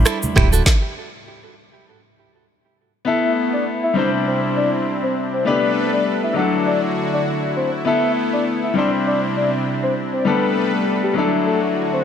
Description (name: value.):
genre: afrobeats.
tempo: 100 BPM.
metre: 4/4.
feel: swing 55% on 16ths.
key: unclear.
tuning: A4 = 440 Hz.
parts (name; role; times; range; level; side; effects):
bright concert grand piano; accompaniment; 0.0-12.0 s; F#3 to C5; -20 LUFS; left 4 dB; none.
sub bass with octave; bass; 0.0-0.6 s; D1; -16 LUFS; equal; none.
direct-recorded clean electric guitar; riff; 0.1-0.6 s; E4 to A4; -26 LUFS; right 11 dB; tape echo.
afro-pop drum kit; drums; 0.1-0.8 s; finger snaps, kick drum, rim click, shaker, snare drum; -17 LUFS; equal; overdrive.
congas; percussion; 0.2-0.5 s; none; -23 LUFS; right 3 dB; none.
soft octave-layered synth lead; melody; 3.1-12.0 s; G4 to F#5; -22 LUFS; left 1 dB; chorus, tremolo, tape echo.
lush unison pad; sustained chords; 3.1-12.0 s; C3 to B4; -23 LUFS; right 1 dB; chorus.
room: light reverb, digital ambience.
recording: none.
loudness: -17 LUFS.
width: side -8 dB against mid.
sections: 0.0-3.1 A section; 3.1-12.0 B section.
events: stop 0.7-3.1.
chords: 0.0 Cadd9; 0.7 N.C.; 3.1 Asus2; 4.0 Cadd9; 5.5 Gadd9; 6.4 Dadd9; 7.9 Asus2; 8.8 Cadd9; 10.3 Gadd9; 11.2 Dadd9.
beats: 0.06 | 0.66 1.26 1.86 2.46 | 3.06 3.66 4.26 4.86 | 5.46 6.06 6.66 7.26 | 7.86 8.46 9.06 9.66 | 10.26 10.86 11.46.